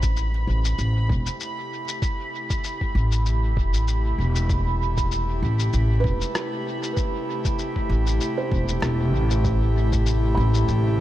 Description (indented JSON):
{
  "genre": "ambient dub",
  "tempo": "97 BPM",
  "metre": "4/4",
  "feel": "swing 56% on 16ths",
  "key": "A minor",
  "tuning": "A4 = 438 Hz",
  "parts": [
    { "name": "airy breathy pad", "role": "sustained chords", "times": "0.0-11.0 s", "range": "C3 to G4", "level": "-29 LUFS", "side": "equal", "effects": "chorus" },
    { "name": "felt-muted upright piano", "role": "arpeggios", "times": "0.0-11.0 s", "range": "B4 to B5", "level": "-34 LUFS", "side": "right 3 dB", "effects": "analog delay" },
    { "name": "upright bass", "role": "bass", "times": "0.0-11.0 s", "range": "E1 to A1", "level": "-21 LUFS", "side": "equal", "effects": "none" },
    { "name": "electronic kick drum", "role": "drums", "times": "0.0-10.0 s", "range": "none", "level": "-26 LUFS", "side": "equal", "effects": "none" },
    { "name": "electronic shaker and rim click", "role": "drums", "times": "0.0-10.8 s", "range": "none", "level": "-32 LUFS", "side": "left 4 dB", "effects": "dub echo" },
    { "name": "bubbling stepped-filter texture", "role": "texture", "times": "0.0-11.0 s", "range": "B5", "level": "-33 LUFS", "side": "right 4 dB", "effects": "chorus, built-in reverb" }
  ],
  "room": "little or no reverb",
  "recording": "echo-heavy mix",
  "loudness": "-21 LUFS",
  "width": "side -14 dB against mid",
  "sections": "0.0-11.0 A section",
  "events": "fade-in on analog synth pad 0.0-11.0",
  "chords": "0.0 Am7"
}